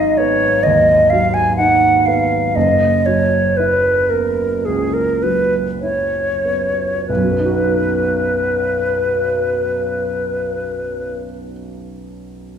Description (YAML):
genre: classical, impressionist duo for flute and grand piano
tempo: 46-64 BPM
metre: 4/4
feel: rubato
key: B major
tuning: A4 = 440 Hz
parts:
  - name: hollow concert flute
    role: melody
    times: 0.0-11.2 s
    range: G#4 to G#5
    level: -16 LUFS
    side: left 1 dB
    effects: none
  - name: dark baby grand piano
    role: accompaniment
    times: 0.0-12.6 s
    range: F#1 to F#4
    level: -20 LUFS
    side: right 3 dB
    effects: none
room: wet recital hall reverb, RT60 1.4 s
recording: recorded in a church or concert hall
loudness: -14 LUFS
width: side -8 dB against mid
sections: 0.0-7.1 A section; 7.1-12.1 B section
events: slowing down 0.0-7.1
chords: 0.0 G#m7; 2.5 F#7sus4; 7.1 B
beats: 0.64 1.57 | 2.55 3.58 4.66 5.81 | 7.08 8.34 9.59 10.80